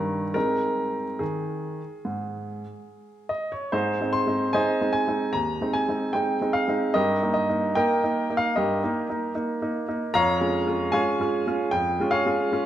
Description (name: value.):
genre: classical-period piano sonatina.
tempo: 74 BPM.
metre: 4/4.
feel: rubato.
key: Ab major.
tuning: A4 = 442 Hz.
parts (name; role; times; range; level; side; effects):
clear baby grand piano; solo; 0.0-12.7 s; Eb2 to C6; -22 LUFS; equal; none.
room: wet recital hall reverb, RT60 1.8 s.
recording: minimal, uncompressed stereo recording.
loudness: -22 LUFS.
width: side -11 dB against mid.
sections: 0.0-3.7 A section; 3.7-12.7 B section.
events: none.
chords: 0.4 Ab; 6.9 Eb/G; 10.1 Db/F.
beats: | 0.35 1.21 2.06 2.89 | 3.73 4.54 5.35 6.14 | 6.95 7.75 8.55 9.34 | 10.15 10.94 11.73 12.52.